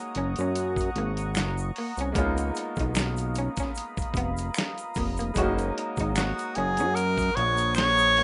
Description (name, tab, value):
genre	R&B, neo-soul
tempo	75 BPM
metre	4/4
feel	swing 55% on 16ths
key	F# major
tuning	A4 = 440 Hz
part	bright upright piano	accompaniment	0.0-8.2 s	G#3 to F#4	-38 LUFS	equal	none
part	deep dark ambient pad	sustained chords	0.0-8.2 s	E#5 to D#6	-38 LUFS	equal	chorus, built-in reverb
part	dusty soul sampler-style drum kit	drums	0.1-8.2 s	hi-hat, kick drum, snare drum	-33 LUFS	equal	none
part	electric guitar through a small old amp	second line	0.2-8.2 s	A#3 to F#4	-36 LUFS	equal	none
part	fat analog bass	bass	0.2-8.2 s	E#1 to F#2	-31 LUFS	equal	none
part	egg shaker and finger snaps	percussion	0.4-8.1 s	none	-41 LUFS	equal	none
part	breathy tenor saxophone	melody	6.2-8.2 s	F#4 to C#5	-25 LUFS	equal	none
room	moderate studio reverb, RT60 0.6 s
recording	rough home demo mix, nothing above 10.6 kHz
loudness	-27 LUFS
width	mono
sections	0.0-8.2 A section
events	none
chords	0.0 F#6; 2.2 C#13; 5.4 F#6